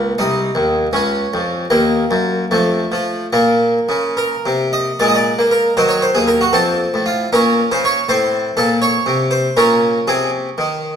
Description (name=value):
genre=classical, baroque-style suite movement for harpsichord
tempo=71-81 BPM (dotted quarters)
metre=6/8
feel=rubato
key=Bb minor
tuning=A4 = 439 Hz
part: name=harpsichord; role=solo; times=0.0-11.0 s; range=C2 to Eb5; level=-14 LUFS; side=equal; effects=none
room=wet recital hall reverb, RT60 1.4 s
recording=none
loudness=-14 LUFS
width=side -8 dB against mid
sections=0.0-5.0 A section; 5.0-11.0 A section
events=none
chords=0.2 Cm; 0.9 Db; 1.7 Ebm; 2.5 F; 3.3 Bbm; 5.0 Bb7; 5.8 Ebm; 6.5 F; 7.3 Bbm; 8.1 Am; 9.6 Bbm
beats=| 0.18 0.94 | 1.72 2.52 | 3.34 4.17 | 5.00 5.78 | 6.55 7.32 | 8.08 8.82 | 9.57 10.32